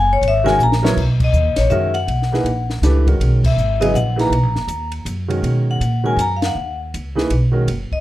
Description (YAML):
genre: modal jazz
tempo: 161 BPM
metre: 3/4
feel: swing 63% on 8ths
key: B major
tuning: A4 = 440 Hz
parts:
  - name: vibraphone with medium hard mallets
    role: melody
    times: 0.0-8.0 s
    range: Db5 to Bb5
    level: -20 LUFS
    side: left 3 dB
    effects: none
  - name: upright bass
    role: bass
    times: 0.0-7.9 s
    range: Gb1 to B2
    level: -18 LUFS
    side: equal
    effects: none
  - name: compact cocktail drum kit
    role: drums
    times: 0.2-8.0 s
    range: crash cymbal, hi-hat, kick drum, ride cymbal, snare drum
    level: -26 LUFS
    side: left 1 dB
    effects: none
  - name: warm concert grand piano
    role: accompaniment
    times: 0.4-7.7 s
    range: C#3 to Db5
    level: -21 LUFS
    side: right 2 dB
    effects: none
room: moderate club reverb, RT60 0.5 s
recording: dark, warm production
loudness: -15 LUFS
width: side -15 dB against mid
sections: 1.0-8.0 A section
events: drum fill 0.6-1.0; band accent 1.2, 3.4, 6.4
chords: 0.0 Gb9; 1.0 Bmaj9